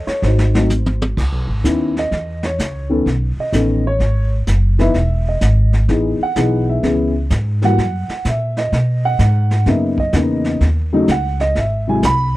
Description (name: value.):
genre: jazz piano trio.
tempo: 127 BPM.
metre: 4/4.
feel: swing 66% on 8ths.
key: C# minor.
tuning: A4 = 440 Hz.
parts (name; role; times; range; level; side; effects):
dark upright piano; melody; 0.0-12.3 s; B#2 to B5; -18 LUFS; left 1 dB; none.
upright bass; bass; 0.0-12.4 s; E1 to B2; -16 LUFS; equal; none.
vintage brush drum kit; drums; 0.1-12.4 s; brushed snare drum, crash cymbal, hi-hat, kick drum, snare drum, toms; -24 LUFS; equal; none.
room: little or no reverb.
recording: dry, close 1970s-style studio recording.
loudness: -14 LUFS.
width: side -17 dB against mid.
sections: 0.0-1.2 A section; 1.2-12.4 B section.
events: drum fill 0.2-1.2; upright piano solo 1.2-12.4.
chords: 0.2 G#7; 1.2 C#m9; 3.1 B9; 4.9 Emaj7; 6.8 C#m7; 7.8 F#; 8.7 Bmaj9; 10.6 D#m7; 11.6 G#aug.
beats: 0.23 0.70 | 1.17 1.64 2.12 2.59 | 3.06 3.53 4.00 4.48 | 4.95 5.42 5.89 6.37 | 6.84 7.31 7.78 8.26 | 8.73 9.20 9.67 10.14 | 10.62 11.09 11.56 12.04.